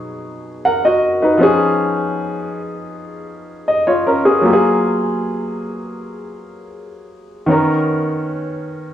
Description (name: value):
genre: soul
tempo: 79 BPM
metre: 4/4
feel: straight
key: F# major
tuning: A4 = 440 Hz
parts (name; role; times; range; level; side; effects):
- warm baby grand piano; solo; 0.0-8.9 s; B2 to F#5; -15 LUFS; equal; none
room: moderate spring reverb, RT60 1.2 s, small room ambience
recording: home recording on cassette, studio reverb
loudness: -14 LUFS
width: side -11 dB against mid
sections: 0.0-4.4 A section; 4.4-8.9 B section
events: none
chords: 0.0 G#m7/B; 1.4 C#7; 4.4 F#maj9; 7.5 Bmaj9